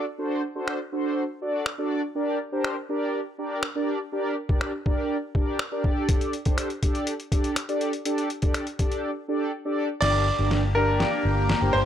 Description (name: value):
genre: dance-pop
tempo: 122 BPM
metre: 4/4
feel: straight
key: G harmonic minor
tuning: A4 = 440 Hz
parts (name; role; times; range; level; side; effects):
- mellow synth brass; accompaniment; 0.0-11.9 s; D4 to D5; -27 LUFS; right 1 dB; chorus, sidechain pumping
- boom bap sampler-style drum kit; drums; 0.7-11.6 s; crash cymbal, finger snaps, hi-hat, kick drum, snare drum; -26 LUFS; equal; none
- bright grand piano; melody; 10.0-11.8 s; Bb4 to D5; -24 LUFS; equal; none
- supersaw pad; sustained chords; 10.0-11.9 s; Bb3 to G4; -30 LUFS; left 1 dB; phaser, sidechain pumping
- vintage muted fingered electric bass; bass; 10.0-11.9 s; G1; -24 LUFS; equal; sidechain pumping
room: light reverb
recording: dry, gritty hardware recording, transformer saturation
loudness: -24 LUFS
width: side -10 dB against mid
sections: 0.0-10.0 A section; 10.0-11.9 B section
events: drums muted 9.0-10.0; build-up 10.0-11.9; drum fill 10.0-11.9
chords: 0.0 D; 2.2 Gm; 5.8 Dsus4; 10.0 Gm